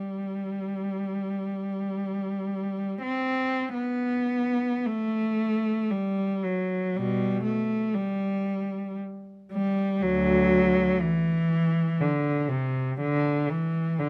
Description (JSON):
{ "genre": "classical, free, expressive piece for unaccompanied cello", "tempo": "33-62 BPM", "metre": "3/4", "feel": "rubato", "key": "G major", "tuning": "A4 = 439 Hz", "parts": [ { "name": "rich cello", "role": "solo", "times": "0.0-14.1 s", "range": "D2 to C4", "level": "-27 LUFS", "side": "equal", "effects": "none" } ], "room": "little or no reverb", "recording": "close, detailed microphones", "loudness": "-27 LUFS", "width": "mono", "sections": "0.0-3.7 A section; 3.7-14.1 B section", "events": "none", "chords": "none" }